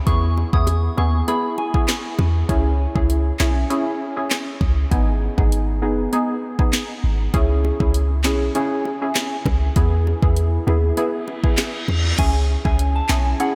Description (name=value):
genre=dancehall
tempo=99 BPM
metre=4/4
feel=straight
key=C# minor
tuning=A4 = 440 Hz
part: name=soft synth bell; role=melody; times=0.1-1.7, 12.2-13.5 s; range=F#5 to D#6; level=-30 LUFS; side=equal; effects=chorus, phaser, tape echo
part: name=wavetable chord stab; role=accompaniment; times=0.1-13.6 s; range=B3 to G#4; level=-26 LUFS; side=equal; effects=lush chorus
part: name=clean 808-style bass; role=bass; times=0.1-13.3 s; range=F#1 to E2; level=-21 LUFS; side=equal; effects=none
part: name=afro-pop drum kit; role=drums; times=0.1-13.6 s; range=crash cymbal, handclaps, hi-hat, kick drum, snare drum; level=-24 LUFS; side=equal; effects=none
part: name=bongos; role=percussion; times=0.4-2.3, 7.6-12.0 s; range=none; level=-35 LUFS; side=equal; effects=none
part: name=reverse cymbal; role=sound effects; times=11.4-12.2 s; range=none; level=-32 LUFS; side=equal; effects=none
room=moderate cathedral reverb, RT60 5.5 s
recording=dreamy mix soaked in reverb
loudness=-20 LUFS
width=mono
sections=0.0-2.5 A section; 2.5-12.2 B section; 12.2-13.6 C section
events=reverse cymbal 11.4-12.2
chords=0.1 E; 2.5 C#m; 4.9 G#m; 7.3 C#m; 9.8 E; 12.2 C#m